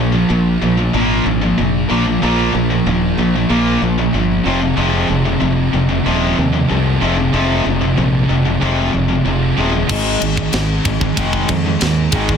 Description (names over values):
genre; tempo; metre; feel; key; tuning
heavy metal; 94 BPM; 4/4; straight; unclear; A4 = 442 Hz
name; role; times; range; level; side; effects
distorted electric guitar; riff; 0.0-12.4 s; F2 to Bb3; -20 LUFS; right 11 dB; distortion
thick fuzz guitar; riff; 0.0-12.4 s; F2 to Bb4; -20 LUFS; equal; distortion
tight distorted guitar; riff; 0.0-12.4 s; F2 to Bb3; -18 LUFS; left 8 dB; distortion
modern bright fingered electric bass; bass; 0.0-12.4 s; Eb1 to F2; -19 LUFS; equal; none
tight metal drum kit; drums; 9.9-12.4 s; crash cymbal, kick drum, ride cymbal, snare drum; -20 LUFS; equal; soft clipping on kick
room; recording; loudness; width
light reverb; dense, heavily limited modern master; -13 LUFS; side -7 dB against mid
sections
0.0-12.4 A section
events
none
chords
0.0 Bb; 4.5 Fm; 9.9 Ab